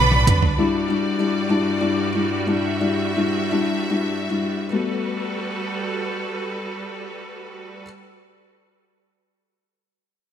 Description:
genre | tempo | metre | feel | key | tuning
six-eight pop ballad | 47-66 BPM (dotted quarters) | 6/8 | straight | G major | A4 = 442 Hz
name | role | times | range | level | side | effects
warm studio violin section | second line | 0.0-0.5 s | B5 | -22 LUFS | right 4 dB | none
felt-muted upright piano | accompaniment | 0.0-7.8 s | G3 to G5 | -22 LUFS | left 4 dB | none
bright studio string section | sustained chords | 0.0-7.8 s | G2 to E5 | -26 LUFS | right 2 dB | none
upright bass | bass | 0.0-0.6 s | B1 to D2 | -20 LUFS | equal | none
punchy analog drum machine | drums | 0.1-0.6 s | hi-hat, toms | -20 LUFS | right 1 dB | none
room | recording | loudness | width
light reverb, small room ambience | bright 1980s-style digital production | -20 LUFS | side -9 dB against mid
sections
0.6-4.7 A section; 4.7-9.8 B section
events
drum fill 0.0-0.6; slowing down 0.6-4.7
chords
0.0 Gmaj7; 0.6 Em7/G; 4.7 Gmaj9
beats
| 0.58 1.50 | 2.47 3.52 | 4.72 6.00 | 7.27

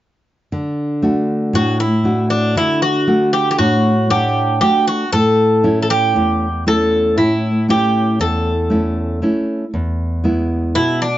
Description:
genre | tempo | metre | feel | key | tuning
greek folk, Greek bouzouki band | 117 BPM (eighths) | 9/8 | straight | D major | A4 = 440 Hz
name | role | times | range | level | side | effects
nylon-string guitar | accompaniment | 0.5-11.2 s | E2 to F#5 | -16 LUFS | equal | none
Greek bouzouki | melody | 1.6-11.2 s | D4 to A4 | -16 LUFS | equal | none
room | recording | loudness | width
moderate studio ambience, RT60 0.5 s | dark, warm production, nothing above 7.5 kHz | -14 LUFS | side -13 dB against mid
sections
0.5-11.2 A section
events
none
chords
0.5 D; 5.1 A; 9.7 E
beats
| 0.52 1.03 1.55 2.06 2.57 3.08 3.60 4.11 4.62 | 5.13 5.65 6.16 6.67 7.18 7.70 8.21 8.72 9.23 | 9.74 10.26 10.77

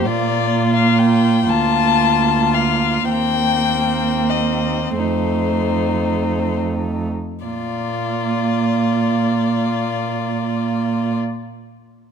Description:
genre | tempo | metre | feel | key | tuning
classical, slow romantic movement for string quartet | 22-44 BPM (dotted quarters) | 6/8 | rubato | Bb major | A4 = 438 Hz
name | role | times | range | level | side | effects
muted violin | melody | 0.0-11.2 s | C5 to A5 | -21 LUFS | left 13 dB | none
muted violin | second line | 0.0-11.2 s | C4 to F4 | -24 LUFS | left 2 dB | none
muted viola | accompaniment | 0.0-11.2 s | A3 to Bb3 | -21 LUFS | right 3 dB | none
muted cello | bass | 0.0-11.1 s | D2 to Bb2 | -22 LUFS | right 5 dB | none
room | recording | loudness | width
light reverb | close, detailed microphones | -16 LUFS | side -7 dB against mid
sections
0.0-7.4 A section; 7.4-11.9 B section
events
slowing down 0.0-7.4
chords
0.1 Bb; 1.5 Bb/D; 3.1 Cm7/Eb; 5.0 F7; 7.4 Bb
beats
| 0.05 1.48 | 3.09 4.98 | 7.45 9.65

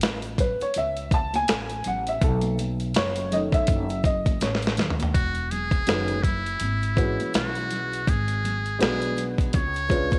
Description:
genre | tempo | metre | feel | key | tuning
hip hop, jazz-hop | 82 BPM | 4/4 | swing 58% on 16ths | E major | A4 = 439 Hz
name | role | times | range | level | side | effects
upright bass | bass | 0.0-10.2 s | E1 to D#2 | -32 LUFS | equal | none
dusty soul sampler-style drum kit | drums | 0.0-10.2 s | hi-hat, kick drum, snare drum, toms | -27 LUFS | equal | cassette tape
tube shaker and congas | percussion | 0.0-10.2 s | none | -40 LUFS | equal | none
dark upright piano | accompaniment | 0.4-10.2 s | D#3 to A5 | -30 LUFS | equal | cassette tape
trumpet with metal mute | melody | 5.1-10.2 s | E4 to C#5 | -31 LUFS | equal | cassette tape, analog delay
room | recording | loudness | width
light reverb, small room reverb | home recording on cassette | -25 LUFS | mono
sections
0.0-5.1 A section; 5.1-10.2 B section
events
upright piano solo 0.0-5.1; drum fill 4.4-5.1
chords
0.0 F#m9 (rootless); 2.2 B9; 5.1 Eadd9; 8.1 G#m7b5; 9.5 C#7b9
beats
0.02 0.76 1.49 | 2.22 2.95 3.68 4.41 | 5.15 5.88 6.61 7.34 | 8.07 8.80 9.54

